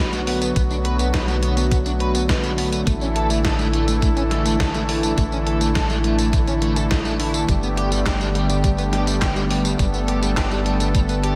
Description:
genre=synthwave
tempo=104 BPM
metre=4/4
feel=straight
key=unclear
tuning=A4 = 440 Hz
part: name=warm analog pad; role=sustained chords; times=0.0-11.4 s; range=D3 to A4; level=-25 LUFS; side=equal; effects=chorus
part: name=crunchy overdriven guitar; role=riff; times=0.0-11.3 s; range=G3 to B4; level=-30 LUFS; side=equal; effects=ensemble chorus, delay
part: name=tight sequencer bass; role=bass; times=0.0-11.4 s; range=G1 to B1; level=-26 LUFS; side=equal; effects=none
part: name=gated 80s digital drum machine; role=drums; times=0.1-11.4 s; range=handclaps, hi-hat, snare drum, tambourine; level=-29 LUFS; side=equal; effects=gated reverb, gated reverb snare
part: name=electronic kick drum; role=drums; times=0.6-11.1 s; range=none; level=-23 LUFS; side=equal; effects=none
room=light reverb, digital ambience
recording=none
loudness=-20 LUFS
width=mono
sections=0.0-11.4 A section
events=none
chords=0.0 Bm7; 2.9 Asus4; 7.5 Gadd9

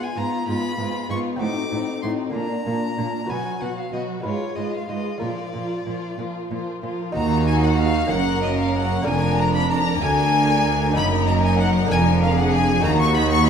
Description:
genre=classical, baroque-style concerto movement with solo episodes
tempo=63 BPM (dotted quarters)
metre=6/8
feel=straight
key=Eb minor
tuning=A4 = 439 Hz
part: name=rich symphonic violin section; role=melody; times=0.0-13.5 s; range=F4 to Db6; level=-28 LUFS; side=left 6 dB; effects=none
part: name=rich violin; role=melody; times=0.0-13.5 s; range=Db5 to D6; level=-28 LUFS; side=left 3 dB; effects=none
part: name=rich chamber violin section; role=second line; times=0.0-13.5 s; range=D4 to Bb4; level=-28 LUFS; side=left 3 dB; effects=none
part: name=lute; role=accompaniment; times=0.0-13.5 s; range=D2 to B4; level=-32 LUFS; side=equal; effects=none
part: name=warm chamber viola section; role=accompaniment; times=0.0-13.5 s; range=F3 to Eb4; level=-27 LUFS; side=right 2 dB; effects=none
part: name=clear studio cello section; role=bass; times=0.2-13.5 s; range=D2 to B2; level=-24 LUFS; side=right 2 dB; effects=none
part: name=clear chamber double bass section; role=bass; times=7.1-13.5 s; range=F1 to Eb2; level=-23 LUFS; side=right 3 dB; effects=none
room=moderate scoring stage reverb, RT60 1.9 s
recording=dark, warm production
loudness=-19 LUFS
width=side -7 dB against mid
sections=0.0-7.2 A section; 7.2-13.5 B section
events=none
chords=0.0 Fdim/Ab; 1.4 Adim7; 2.3 Bb; 3.3 B5; 4.2 Fdim/Ab; 5.2 Bb; 7.2 Ebm; 8.1 Gb; 9.1 Bb7/F; 11.0 Ebm/Gb; 11.9 Bb7/F; 12.8 Ebm

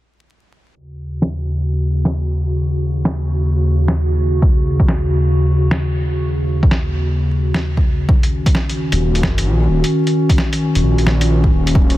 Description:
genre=future garage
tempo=131 BPM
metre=4/4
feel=swing 63% on 16ths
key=Eb minor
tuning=A4 = 440 Hz
part: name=warbly tape-like pad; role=sustained chords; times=0.8-12.0 s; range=Eb2 to Gb4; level=-17 LUFS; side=equal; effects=chorus, built-in reverb, vintage 12-bit sampler grit, sidechain pumping
part: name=lo-fi sampler-style drum kit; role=drums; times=1.2-12.0 s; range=hi-hat, snare drum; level=-21 LUFS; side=equal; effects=low-pass filter on snare, studio ambience, low-pass filter on hats
part: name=electronic kick drum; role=drums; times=4.4-11.9 s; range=none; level=-14 LUFS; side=equal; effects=studio ambience
part: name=swelling detuned saw bass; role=bass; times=8.9-12.0 s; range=Eb1 to Bb1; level=-16 LUFS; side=equal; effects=sidechain pumping
room=light reverb, digital ambience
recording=dense, heavily limited modern master, vinyl crackle, low-pass filter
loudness=-14 LUFS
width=side -15 dB against mid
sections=0.8-8.1 A section; 8.1-12.0 B section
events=filter sweep on drum 0.8-8.1; filter sweep 0.8-8.1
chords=0.8 Ebm7

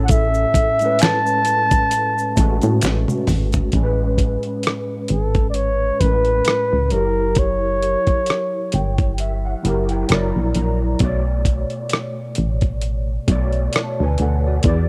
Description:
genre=R&B, neo-soul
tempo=66 BPM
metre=4/4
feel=swing 57% on 16ths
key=A major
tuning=A4 = 438 Hz
part: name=breathy flugelhorn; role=melody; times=0.0-9.2 s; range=A4 to A5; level=-22 LUFS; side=equal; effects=none
part: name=overdriven tine electric piano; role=accompaniment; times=0.0-14.9 s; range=A2 to A#5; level=-26 LUFS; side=equal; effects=ensemble chorus
part: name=solid FM bass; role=bass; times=0.0-14.9 s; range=F#1 to A2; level=-22 LUFS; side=equal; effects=none
part: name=dusty soul sampler-style drum kit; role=drums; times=0.1-14.9 s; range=hi-hat, kick drum, rim click, snare drum, toms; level=-21 LUFS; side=equal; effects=overdrive
part: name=maracas and finger snaps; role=percussion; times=0.1-3.7 s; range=none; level=-34 LUFS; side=equal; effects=none
room=little or no reverb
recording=dry, close 1970s-style studio recording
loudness=-19 LUFS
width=mono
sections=0.0-3.7 A section; 3.7-14.9 B section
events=drum fill 2.8-3.7; tine electric piano fill 8.3-11.0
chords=0.0 Amaj7; 3.7 Amaj9; 6.9 F#7b9; 10.1 F#7b13; 11.0 Bm9

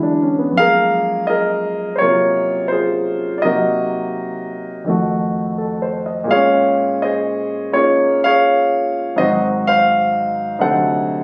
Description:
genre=solo jazz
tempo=84 BPM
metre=4/4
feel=swing 69% on 8ths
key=unclear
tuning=A4 = 440 Hz
part: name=warm concert grand piano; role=solo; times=0.0-11.2 s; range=D2 to F#5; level=-17 LUFS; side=equal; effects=none
room=light reverb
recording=recorded on a phone in the room, studio reverb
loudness=-17 LUFS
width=mono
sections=0.0-11.2 A section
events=none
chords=0.0 E9; 0.6 Gbmaj9; 3.4 Cm7b5; 4.9 F7b9; 6.3 Bbm9; 9.2 Ab7; 10.6 D7b9

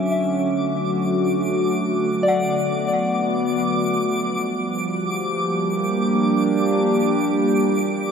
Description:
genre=ambient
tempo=free time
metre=none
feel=none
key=unclear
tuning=A4 = 440 Hz
part: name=warbly tape-like pad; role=sustained chords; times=0.0-8.1 s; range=D3 to G4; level=-20 LUFS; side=equal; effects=chorus, built-in reverb, shimmer reverb
part: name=soft synth bell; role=arpeggios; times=0.0-4.5 s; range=D5 to F#5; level=-26 LUFS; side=left 2 dB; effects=chorus, ping-pong delay, shimmer reverb
part: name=twinkling granular texture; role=texture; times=0.0-8.1 s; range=D6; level=-28 LUFS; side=right 2 dB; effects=built-in reverb, shimmer reverb
room=wet huge ambient reverb, RT60 8.0 s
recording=none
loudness=-18 LUFS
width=side -6 dB against mid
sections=0.0-8.1 A section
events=filter sweep on ambient pad 0.0-8.1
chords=0.0 Dmaj7; 0.7 Bm7; 4.1 Gm7; 7.5 C (rootless)

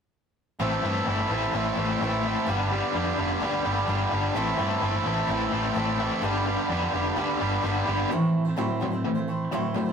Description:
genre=rock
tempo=128 BPM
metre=4/4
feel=straight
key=A minor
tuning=A4 = 440 Hz
part: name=picked swing-style acoustic guitar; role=accompaniment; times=0.6-9.9 s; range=A2 to C5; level=-33 LUFS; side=right 2 dB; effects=none
part: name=distorted electric guitar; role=riff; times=0.6-9.9 s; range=G2 to A4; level=-28 LUFS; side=right 4 dB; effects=overdrive
part: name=overdriven electric guitar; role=riff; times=0.6-9.9 s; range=G2 to A3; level=-28 LUFS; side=left 4 dB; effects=tremolo
part: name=fuzz picked electric bass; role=bass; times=0.6-8.0 s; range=F1 to G2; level=-30 LUFS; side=left 1 dB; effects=overdrive
room=moderate booth ambience, RT60 0.2 s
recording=rough rehearsal-room recording, warm saturation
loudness=-23 LUFS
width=side -7 dB against mid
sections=0.6-8.1 A section; 8.1-9.9 B section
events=none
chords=0.6 Am; 2.5 G; 4.4 Am; 6.2 G; 8.1 Am

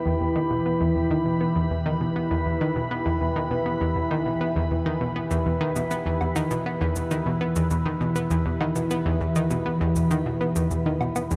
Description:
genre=ambient, sequencer-driven space music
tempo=100 BPM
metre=4/4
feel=straight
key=E harmonic minor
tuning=A4 = 440 Hz
part: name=evolving wavetable pad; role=sustained chords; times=0.0-11.4 s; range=E3 to B5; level=-28 LUFS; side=equal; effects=phaser, built-in reverb, shimmer reverb
part: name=analog pluck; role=riff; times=0.1-11.4 s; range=E2 to B3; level=-27 LUFS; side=equal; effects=chorus, tape echo
part: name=shaker and woodblock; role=percussion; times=5.3-11.4 s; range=none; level=-38 LUFS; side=equal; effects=tape echo
room=wet cathedral reverb, RT60 5.5 s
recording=in a vast, echoing space, cassette tape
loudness=-25 LUFS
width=mono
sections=0.0-11.4 A section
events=none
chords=0.0 Em

